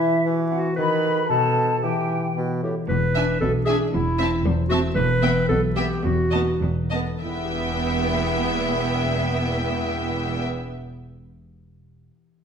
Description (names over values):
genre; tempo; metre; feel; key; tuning
cinematic, playful, whimsical film cue; 97-117 BPM; 2/4; straight; E minor; A4 = 441 Hz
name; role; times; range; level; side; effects
clear clarinet; second line; 0.0-10.4 s; E4 to B4; -26 LUFS; right 1 dB; none
large flute ensemble; second line; 0.0-2.3 s; E5 to B5; -24 LUFS; left 2 dB; none
clear bassoon; accompaniment; 0.0-2.7 s; A2 to E3; -25 LUFS; right 3 dB; none
concert harp; arpeggios; 0.0-11.1 s; B2 to E5; -28 LUFS; left 5 dB; none
rich studio cello section; bass; 2.9-10.4 s; E2 to B2; -29 LUFS; right 2 dB; none
rich studio double bass section; bass; 2.9-10.4 s; E1 to B1; -27 LUFS; right 2 dB; none
clear studio violin section; second line; 3.1-10.4 s; D#5 to E5; -30 LUFS; left 1 dB; none
rich studio violin section; melody; 3.2-10.4 s; G5 to A5; -34 LUFS; left 2 dB; none
warm studio viola section; accompaniment; 3.2-10.4 s; B3 to D4; -28 LUFS; right 2 dB; none
room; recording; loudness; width
wet stone room reverb, RT60 1.2 s; none; -20 LUFS; side -7 dB against mid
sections
0.0-2.9 A section; 2.9-7.2 B section; 7.2-9.7 C section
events
slowing down 4.4-7.2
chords
0.0 Esus2; 0.8 B7/D#; 1.3 B7; 1.8 Em; 2.9 E7; 3.9 Am/E; 5.0 Em; 6.0 B7/E; 7.2 Em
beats
0.26 | 0.78 1.30 | 1.83 2.36 | 2.89 3.41 | 3.93 4.44 | 4.96 5.49 | 6.04 6.61 | 7.22 7.83 | 8.45 9.05